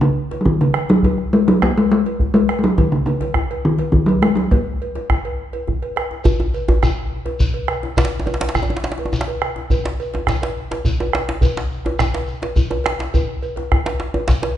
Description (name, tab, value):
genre	west african traditional, West African drum ensemble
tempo	139 BPM (dotted quarters)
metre	12/8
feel	straight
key	F# major pentatonic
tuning	A4 = 440 Hz
part	talking drum	melody	0.0-5.1 s	C#3 to A#3	-15 LUFS	left 1 dB	none
part	cowbell	percussion	0.0-14.6 s	none	-28 LUFS	right 3 dB	none
part	djembe	percussion	0.3-14.4 s	none	-25 LUFS	left 3 dB	none
part	bombo	percussion	0.5-14.4 s	none	-21 LUFS	right 1 dB	none
part	shekere	percussion	6.2-14.4 s	none	-29 LUFS	left 1 dB	none
part	djembe	percussion	6.3-14.6 s	none	-22 LUFS	right 1 dB	none
room	wet recital hall reverb, RT60 1.6 s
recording	heard from further back in the room, nothing above 10.4 kHz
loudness	-16 LUFS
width	side -11 dB against mid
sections	0.0-6.2 A section; 6.2-14.6 B section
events	none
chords	none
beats	0.16 0.59 | 1.03 1.47 1.90 2.34 | 2.77 3.21 3.65 4.08 | 4.51 4.95 5.38 5.82 | 6.25 6.68 7.12 7.55 | 7.98 8.41 8.84 9.27 | 9.71 10.13 10.56 10.99 | 11.42 11.85 12.28 12.71 | 13.14 13.57 13.99 14.42